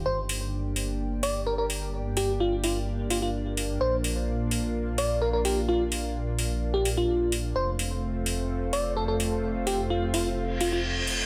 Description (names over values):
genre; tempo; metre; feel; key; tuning
EDM, festival progressive house; 128 BPM; 4/4; straight; G minor; A4 = 439 Hz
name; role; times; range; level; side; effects
lush unison pad; sustained chords; 0.0-11.3 s; A3 to G4; -35 LUFS; equal; chorus
detuned saw bass; bass; 0.0-11.3 s; F1 to Bb1; -33 LUFS; equal; none
bell-like FM electric piano; melody; 0.1-10.8 s; F4 to D5; -31 LUFS; equal; chorus, digital delay
electronic hi-hat; drums; 0.3-11.2 s; none; -35 LUFS; equal; overdrive
reverse cymbal; sound effects; 10.5-11.3 s; none; -31 LUFS; equal; none
room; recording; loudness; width
light reverb, digital ambience; none; -28 LUFS; mono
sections
0.0-11.3 A section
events
filter sweep on analog synth pad 0.0-11.3; reverse cymbal 10.5-11.3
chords
0.1 Gm; 3.8 Bb; 7.6 F